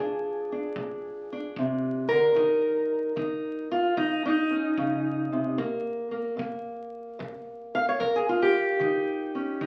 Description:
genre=acoustic country blues, solo or duo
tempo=75 BPM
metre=4/4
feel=swing 67% on 8ths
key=unclear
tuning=A4 = 440 Hz
part: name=fingerpicked steel-string acoustic guitar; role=melody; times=0.0-9.7 s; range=Bb2 to F5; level=-28 LUFS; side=equal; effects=none
part: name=kick drum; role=drums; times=0.8-9.7 s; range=none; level=-46 LUFS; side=equal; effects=none
room=wet large studio reverb, RT60 0.9 s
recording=very old 78 rpm record, vinyl crackle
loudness=-27 LUFS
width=mono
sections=0.0-9.7 A section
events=steel-string acoustic guitar solo 0.0-9.7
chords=0.0 Bb7; 2.4 Eb5; 5.6 N.C.; 8.8 Eb7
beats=0.76 1.56 | 2.37 3.17 3.98 4.78 | 5.58 6.39 7.19 8.00 | 8.80 9.60

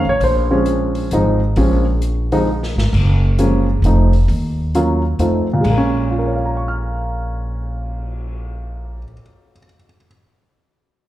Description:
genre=jazz piano trio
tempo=132 BPM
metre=3/4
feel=swing 65% on 8ths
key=Bb minor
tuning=A4 = 439 Hz
part: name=warm baby grand piano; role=melody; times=0.0-10.1 s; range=Bb2 to F6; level=-18 LUFS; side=equal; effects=none
part: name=upright bass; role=bass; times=0.0-9.0 s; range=F1 to F2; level=-18 LUFS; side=equal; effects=none
part: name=open jazz drum kit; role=drums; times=0.2-8.3 s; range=crash cymbal, cymbal swell, hi-hat, kick drum, snare drum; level=-28 LUFS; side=left 1 dB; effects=none
room=light reverb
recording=live gig heard through the venue's PA, club reverb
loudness=-15 LUFS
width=side -14 dB against mid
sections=0.0-2.9 A section; 2.9-5.6 B section; 5.6-8.4 C section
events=drum fill 2.5-2.9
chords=0.2 Bbm9; 2.9 Gbmaj7; 3.8 F7; 4.3 Ebm7; 5.2 F7; 5.6 Bbm7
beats=| 0.21 0.67 1.12 | 1.57 2.02 2.48 | 2.93 3.38 3.84 | 4.29 4.74 5.20 | 5.65 6.10 6.55 | 7.00 7.46 7.91

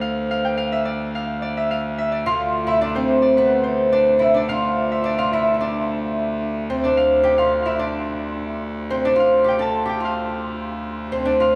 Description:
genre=medieval dance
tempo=108 BPM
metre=2/4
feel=straight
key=D dorian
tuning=A4 = 442 Hz
part: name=Celtic harp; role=melody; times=0.0-11.6 s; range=B4 to A5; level=-22 LUFS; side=equal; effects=none
part: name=pipe organ, full organ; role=drone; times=0.0-11.6 s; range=D2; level=-30 LUFS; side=equal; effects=none
part: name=lute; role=second line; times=2.3-11.6 s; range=B3 to A4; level=-26 LUFS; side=equal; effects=none
room=wet cathedral reverb, RT60 6.7 s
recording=heard from further back in the room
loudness=-20 LUFS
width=mono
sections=0.0-6.7 A section; 6.7-11.6 B section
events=none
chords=none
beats=| 0.02 0.58 | 1.14 1.70 | 2.25 2.81 | 3.37 3.92 | 4.48 5.03 | 5.59 6.14 | 6.70 7.25 | 7.80 8.35 | 8.91 9.46 | 10.01 10.56 | 11.11

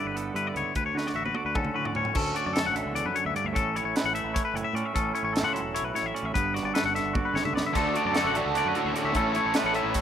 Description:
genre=math rock and midwest emo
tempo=300 BPM (eighths)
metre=7/8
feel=straight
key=D major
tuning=A4 = 440 Hz
part: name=twangy electric guitar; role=accompaniment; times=0.0-10.0 s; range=D2 to B4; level=-31 LUFS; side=right 6 dB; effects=spring reverb
part: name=twangy electric guitar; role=arpeggios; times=0.0-10.0 s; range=A4 to F#5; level=-29 LUFS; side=left 7 dB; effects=none
part: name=growling fingered electric bass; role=bass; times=0.1-10.0 s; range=E1 to D3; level=-36 LUFS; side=equal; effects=overdrive
part: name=crisp fusion drum kit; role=drums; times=0.2-10.0 s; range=crash cymbal, hi-hat, kick drum, snare drum, splash cymbal, toms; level=-31 LUFS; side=equal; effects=none
part: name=cranked stack guitar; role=riff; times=7.7-10.0 s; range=D3 to A4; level=-26 LUFS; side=right 2 dB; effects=overdrive
room=light reverb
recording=rough home demo mix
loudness=-24 LUFS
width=side -9 dB against mid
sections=0.0-2.2 A section; 2.2-10.0 B section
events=drum fill 0.9-2.2, 7.1-7.7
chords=0.0 G6; 0.7 Dmaj7; 3.6 Aadd9; 5.0 F#m7/A; 6.3 Gmaj7; 7.7 Dmaj7; 9.1 Aadd9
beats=0.14 0.35 0.55 | 0.75 0.95 1.15 1.35 1.55 1.75 1.95 | 2.15 2.35 2.55 2.75 2.95 3.15 3.35 | 3.55 3.75 3.95 4.15 4.35 4.55 4.75 | 4.95 5.15 5.35 5.55 5.75 5.95 6.15 | 6.35 6.55 6.75 6.95 7.15 7.35 7.55 | 7.75 7.95 8.15 8.35 8.55 8.75 8.95 | 9.15 9.35 9.55 9.75 9.95

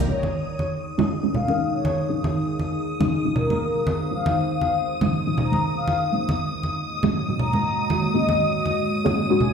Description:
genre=deep house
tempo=119 BPM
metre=4/4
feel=swing 59% on 16ths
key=Eb dorian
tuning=A4 = 440 Hz
part: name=deep dark ambient pad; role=sustained chords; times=0.0-9.5 s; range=Ab3 to F5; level=-28 LUFS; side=left 1 dB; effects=chorus, built-in reverb
part: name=string machine, violins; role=texture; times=0.0-9.5 s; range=Eb6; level=-31 LUFS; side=equal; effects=ensemble chorus
part: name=mellow horn-like synth lead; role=melody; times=0.1-9.5 s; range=Bb4 to Bb5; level=-26 LUFS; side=left 3 dB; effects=chorus, ping-pong delay
part: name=filtered dub chord stab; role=stabs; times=0.1-9.5 s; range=Ab3 to Bb4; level=-24 LUFS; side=equal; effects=phaser, analog chorus, tape echo
part: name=congas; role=percussion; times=0.2-9.5 s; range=none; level=-26 LUFS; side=right 2 dB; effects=none
room=wet digital room reverb, RT60 1.0 s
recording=played on a big sound system in a bare room, large studio reverb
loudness=-20 LUFS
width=side -6 dB against mid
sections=0.1-9.5 A section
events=none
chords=0.1 Eb9sus4; 6.1 Ab9sus4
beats=| 0.08 0.58 1.09 1.59 | 2.10 2.60 3.10 3.61 | 4.11 4.62 5.12 5.63 | 6.13 6.63 7.14 7.64 | 8.15 8.65 9.15

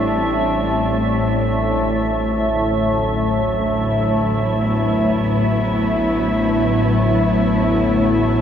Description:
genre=dark ambient drone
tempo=free time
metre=none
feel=none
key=unclear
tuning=A4 = 439 Hz
part: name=muted symphonic cello section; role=sustained chords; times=0.0-8.4 s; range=D2 to E4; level=-20 LUFS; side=equal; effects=shimmer reverb
part: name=organ-like drone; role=drone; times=0.0-8.4 s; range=A1 to A2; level=-18 LUFS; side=left 1 dB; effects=ensemble chorus, built-in reverb
part: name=icy glass pad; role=texture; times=0.0-8.4 s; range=E5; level=-27 LUFS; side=right 2 dB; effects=chorus, built-in reverb, shimmer reverb
room=wet huge ambient reverb, RT60 8.6 s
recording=none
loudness=-16 LUFS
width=side -9 dB against mid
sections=0.0-8.4 A section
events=none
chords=0.0 Am; 1.8 D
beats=free time

